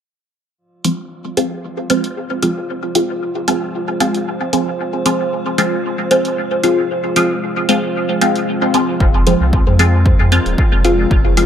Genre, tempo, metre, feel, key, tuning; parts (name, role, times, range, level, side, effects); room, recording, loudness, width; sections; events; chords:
dub techno; 114 BPM; 4/4; swing 54% on 16ths; F dorian; A4 = 441 Hz
deep dark ambient pad; sustained chords; 2.6-11.5 s; Ab3 to D5; -23 LUFS; right 1 dB; chorus, built-in reverb, sidechain pumping
metallic inharmonic drone; texture; 1.0-11.5 s; F3 to Bb4; -28 LUFS; right 1 dB; chorus, built-in reverb, sidechain pumping
filtered dub chord stab; stabs; 0.8-11.5 s; F3 to F4; -16 LUFS; left 1 dB; phaser, sidechain pumping, dub echo
electronic hi-hat; drums; 0.8-11.5 s; -23 LUFS; right 2 dB
warm sub bass; bass; 9.0-11.5 s; Eb1 to F2; -15 LUFS; equal; tube saturation, sidechain pumping
electronic kick drum; drums; 9.0-11.2 s; -14 LUFS; equal
moderate spring reverb, RT60 2.4 s; echo-heavy mix; -14 LUFS; side -9 dB against mid
0.6-11.5 A section
filter sweep on synth stab 0.6-11.5
0.6 Fm